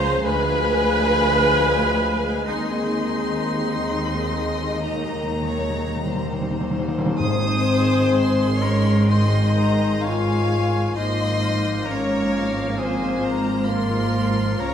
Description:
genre	classical, slow romantic movement for symphony orchestra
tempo	49-67 BPM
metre	4/4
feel	rubato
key	Ab major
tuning	A4 = 440 Hz
part	rich chamber violin section	melody	0.0-14.7 s	F5 to Eb6	-30 LUFS	left 3 dB	none
part	bright clarinet	second line	0.0-14.7 s	Ab3 to C5	-30 LUFS	left 1 dB	none
part	rich chamber violin section	second line	0.0-14.7 s	Bb4 to Ab5	-29 LUFS	left 3 dB	none
part	small flute group	second line	0.0-14.7 s	Eb5 to F6	-33 LUFS	left 5 dB	none
part	clear studio viola section	accompaniment	0.0-14.7 s	Eb3 to C5	-28 LUFS	right 2 dB	none
part	mellow French horn section	sustained chords	0.0-14.7 s	Bb3 to Bb4	-26 LUFS	left 3 dB	none
part	mellow trombone section	sustained chords	0.0-14.7 s	Eb3 to Bb3	-31 LUFS	right 2 dB	none
part	rich symphonic cello section	bass	0.0-14.7 s	Db2 to Ab2	-26 LUFS	equal	none
part	rich symphonic double bass section	bass	0.0-14.7 s	Ab1 to Eb2	-26 LUFS	right 3 dB	none
part	timpani	percussion	4.9-8.6 s	Ab2 to Eb3	-26 LUFS	left 1 dB	none
part	warm oboe	second line	7.2-14.7 s	F4 to Db5	-33 LUFS	equal	none
room	wet scoring stage reverb, RT60 1.6 s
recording	none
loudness	-19 LUFS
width	side -8 dB against mid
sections	0.0-7.2 A section; 7.2-14.7 B section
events	timpani fill 4.9-7.2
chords	0.3 Ddim7; 2.5 Ab/Eb; 4.9 Eb; 7.2 Ab; 10.9 Bbm7/Ab

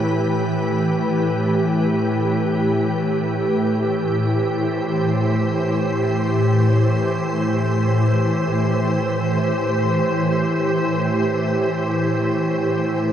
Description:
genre	ambient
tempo	free time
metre	none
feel	none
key	A minor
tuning	A4 = 438 Hz
part	soft additive organ-like pad	solo	0.0-13.1 s	A2 to C5	-18 LUFS	equal	ensemble chorus, built-in reverb, diffuse ambient delay
room	wet huge ambient reverb, RT60 7.6 s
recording	none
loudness	-17 LUFS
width	side -9 dB against mid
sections	0.0-3.1 A section; 3.1-13.1 B section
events	none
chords	0.0 Em/A; 3.1 Am7

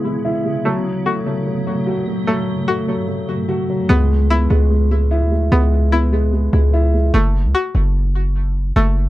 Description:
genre	hip hop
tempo	148 BPM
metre	4/4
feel	half-time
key	C# minor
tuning	A4 = 444 Hz
part	dark concert grand piano	accompaniment	0.0-7.2 s	F#3 to F#4	-20 LUFS	equal	low-pass filter
part	granular cloud pad	sustained chords	0.0-3.9 s	F#2 to E4	-25 LUFS	right 1 dB	built-in reverb, low-pass filter
part	string-like resonator pluck	arpeggios	0.0-9.1 s	A3 to F#4	-22 LUFS	left 1 dB	chorus, low-pass filter, tape echo
part	distorted 808-style bass	bass	3.9-9.1 s	F#1 to D2	-14 LUFS	equal	distortion
room	little or no reverb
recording	dark, warm production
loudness	-15 LUFS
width	side -16 dB against mid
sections	0.0-3.9 A section; 3.9-9.1 B section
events	break 7.1-9.1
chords	0.0 C#m7; 0.7 F#m; 3.9 C#m7; 7.1 F#m

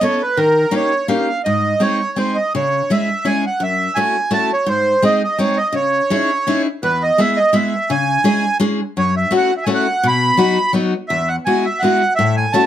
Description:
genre	musette waltz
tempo	168 BPM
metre	3/4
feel	straight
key	C# minor, E major from 6.8 s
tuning	A4 = 441 Hz
part	accordion	melody	0.0-12.7 s	A#4 to B5	-16 LUFS	right 2 dB	none
part	picked steel-string acoustic guitar	accompaniment	0.0-12.7 s	E2 to A4	-18 LUFS	left 2 dB	none
room	light reverb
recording	none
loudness	-14 LUFS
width	side -11 dB against mid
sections	0.0-6.8 A section; 6.8-12.7 B section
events	none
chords	0.4 D#7; 1.4 G#; 2.5 C#m; 3.6 F#m7; 4.7 G#; 5.7 C#madd9; 6.8 E; 7.9 C#m; 9.0 F#m7; 10.0 B; 11.1 Eadd9

